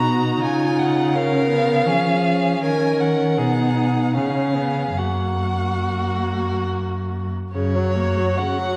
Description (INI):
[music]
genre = classical, slow romantic movement for string quartet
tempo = 69-83 BPM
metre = 3/4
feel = rubato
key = F# major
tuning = A4 = 441 Hz
[part]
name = rich violin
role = melody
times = 0.0-8.8 s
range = C#5 to A#5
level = -28 LUFS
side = equal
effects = none
[part]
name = rich violin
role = second line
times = 0.0-8.8 s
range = E#4 to A#4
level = -27 LUFS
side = equal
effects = none
[part]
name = warm viola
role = accompaniment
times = 0.0-8.8 s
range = C#3 to D#4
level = -27 LUFS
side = equal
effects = none
[part]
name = warm cello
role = bass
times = 0.0-8.2 s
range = F#2 to E#3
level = -25 LUFS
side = equal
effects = none
[sound]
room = wet scoring stage reverb, RT60 1.6 s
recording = dark, warm production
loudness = -20 LUFS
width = mono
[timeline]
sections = 0.0-7.5 A section; 7.5-8.8 B section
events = none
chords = 0.4 C#7; 2.6 D#m7; 3.4 B6; 4.2 C#7; 5.0 F#